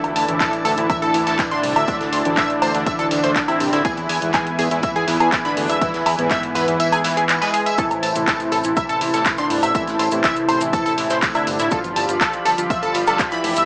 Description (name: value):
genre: melodic techno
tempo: 122 BPM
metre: 4/4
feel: straight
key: A minor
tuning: A4 = 441 Hz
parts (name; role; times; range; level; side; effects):
- soft supersaw; melody; 0.0-13.6 s; C3 to G#4; -23 LUFS; equal; sidechain pumping, tape echo
- lush unison pad; sustained chords; 0.0-13.7 s; E4 to B5; -26 LUFS; equal; chorus, phaser, sidechain pumping, cassette tape
- fat analog bass; bass; 0.0-13.7 s; F1 to E2; -26 LUFS; equal; sidechain pumping
- swarming drone; drone; 0.0-7.8 s; none; barely audible; none; none
- punchy analog drum machine; drums; 0.0-13.7 s; handclaps, hi-hat, woodblock; -22 LUFS; equal; sidechain pumping on hats, sidechain pumping on cymbals, sidechain pumping on perc
- tight sequenced synth; arpeggios; 0.2-13.7 s; E4 to A6; -21 LUFS; equal; chorus, sidechain pumping, cassette tape, tape echo
- loose indie drum kit; drums; 0.2-13.7 s; hi-hat, snare drum, tambourine; -32 LUFS; equal; none
- analog synth brass; stabs; 0.3-11.8 s; G#2 to E4; -26 LUFS; equal; chorus, sidechain pumping, cassette tape, tape echo
- electronic kick drum; drums; 0.4-13.3 s; none; -25 LUFS; equal; none
- maracas; percussion; 7.8-13.7 s; none; -36 LUFS; equal; none
room: moderate spring reverb, RT60 1.1 s, digital ambience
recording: home recording on cassette, small speaker sound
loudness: -16 LUFS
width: side -26 dB against mid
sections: 0.0-13.7 A section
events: none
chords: 0.0 Dsus2; 3.8 E; 7.8 Am; 11.7 G